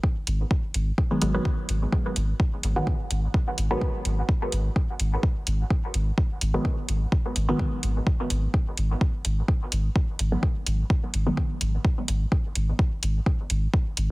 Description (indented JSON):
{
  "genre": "dub techno",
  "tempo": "127 BPM",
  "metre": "4/4",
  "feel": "swing 54% on 16ths",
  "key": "G# minor",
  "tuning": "A4 = 440 Hz",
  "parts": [
    { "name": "electronic kick drum", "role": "drums", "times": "0.0-13.8 s", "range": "none", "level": "-23 LUFS", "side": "equal", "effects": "small room reverb" },
    { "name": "soft dub sub bass", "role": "bass", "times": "0.3-14.1 s", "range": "G#1", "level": "-24 LUFS", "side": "equal", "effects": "sidechain pumping" },
    { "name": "electronic hi-hat", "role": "drums", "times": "0.3-14.1 s", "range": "none", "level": "-30 LUFS", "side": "equal", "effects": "small room reverb" },
    { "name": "filtered dub chord stab", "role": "stabs", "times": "1.1-14.1 s", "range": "D#3 to B3", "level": "-30 LUFS", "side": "equal", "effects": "chorus, phaser, sidechain pumping, dub echo" }
  ],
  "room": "light reverb",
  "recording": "heavily compressed radio sound",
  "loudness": "-23 LUFS",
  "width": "side -21 dB against mid",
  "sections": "0.0-14.1 A section",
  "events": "none",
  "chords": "0.0 G#m7"
}